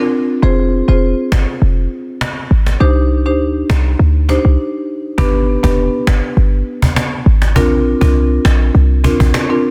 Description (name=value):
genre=dancehall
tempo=101 BPM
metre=4/4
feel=straight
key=unclear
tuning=A4 = 440 Hz
part: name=marimba with medium mallets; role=accompaniment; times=0.0-9.6 s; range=B3 to C5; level=-19 LUFS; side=equal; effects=none
part: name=short 808-style bass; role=bass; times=0.4-9.3 s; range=F1 to D2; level=-14 LUFS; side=equal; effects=none
part: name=cajon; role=drums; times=1.3-9.5 s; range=none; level=-21 LUFS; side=equal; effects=none
room=studio reverb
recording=dense, heavily limited modern master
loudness=-14 LUFS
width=mono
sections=0.0-5.2 A section; 5.2-9.7 B section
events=break 4.6-5.2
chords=0.4 Fm; 2.8 Cmadd9; 5.2 G; 7.6 Bbadd9